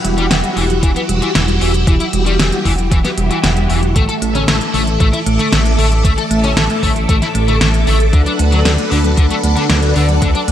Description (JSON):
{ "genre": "synthwave", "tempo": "115 BPM", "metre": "4/4", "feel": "straight", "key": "E minor", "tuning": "A4 = 440 Hz", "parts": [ { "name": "string machine, full ensemble", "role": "sustained chords", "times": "0.0-10.5 s", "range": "A3 to D6", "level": "-19 LUFS", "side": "equal", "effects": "phaser, ensemble chorus, sidechain pumping" }, { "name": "thumb-piano-like synth pluck", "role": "arpeggios", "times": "0.0-10.5 s", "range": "D3 to A3", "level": "-22 LUFS", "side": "right 2 dB", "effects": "chorus, digital delay" }, { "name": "dark detuned saw bass", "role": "bass", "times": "0.0-10.5 s", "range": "E1 to D2", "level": "-15 LUFS", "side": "equal", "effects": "none" }, { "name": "pop drum kit", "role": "drums", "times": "0.0-10.5 s", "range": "hi-hat, snare drum", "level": "-19 LUFS", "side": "equal", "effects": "gated reverb" }, { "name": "overdriven semi-hollow guitar", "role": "riff", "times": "0.2-10.4 s", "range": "D3 to A4", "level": "-20 LUFS", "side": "left 4 dB", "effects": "ensemble chorus, digital delay" }, { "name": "electronic kick drum", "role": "drums", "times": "0.8-10.3 s", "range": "none", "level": "-14 LUFS", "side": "equal", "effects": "none" } ], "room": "light reverb, digital ambience", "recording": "none", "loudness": "-11 LUFS", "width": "side -11 dB against mid", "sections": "0.0-10.5 A section", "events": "none", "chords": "0.0 Emadd9; 4.0 Asus4; 8.1 D6" }